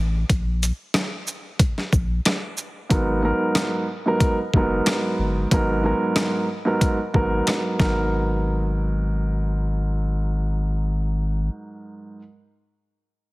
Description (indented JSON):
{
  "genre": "hip hop, boom-bap hip-hop",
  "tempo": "92 BPM",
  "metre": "4/4",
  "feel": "swing 54% on 16ths",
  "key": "G# minor",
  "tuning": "A4 = 440 Hz",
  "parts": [
    { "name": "warm sub bass", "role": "bass", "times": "0.0-11.5 s", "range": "F#1 to A#1", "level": "-23 LUFS", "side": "equal", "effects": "none" },
    { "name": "boom bap sampler-style drum kit", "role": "drums", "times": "0.3-8.0 s", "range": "hi-hat, kick drum, rim click, shaker, snare drum", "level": "-22 LUFS", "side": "equal", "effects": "overdrive" },
    { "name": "dark baby grand piano", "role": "accompaniment", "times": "2.9-12.2 s", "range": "G#2 to A#4", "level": "-23 LUFS", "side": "right 1 dB", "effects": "cassette tape, high-pass filter, low-pass filter" }
  ],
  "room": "light reverb, digital ambience",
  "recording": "heavily compressed radio sound, multiband compression",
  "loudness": "-20 LUFS",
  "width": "side -21 dB against mid",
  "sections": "0.0-2.9 A section; 2.9-8.1 B section; 8.1-10.7 C section",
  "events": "break 0.0-2.9",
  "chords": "0.3 N.C.; 2.9 G#m9",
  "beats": "| 0.30 0.95 1.60 2.25 | 2.90 3.56 4.21 4.86 | 5.51 6.17 6.82 7.47 | 8.12 8.77 9.43 10.08"
}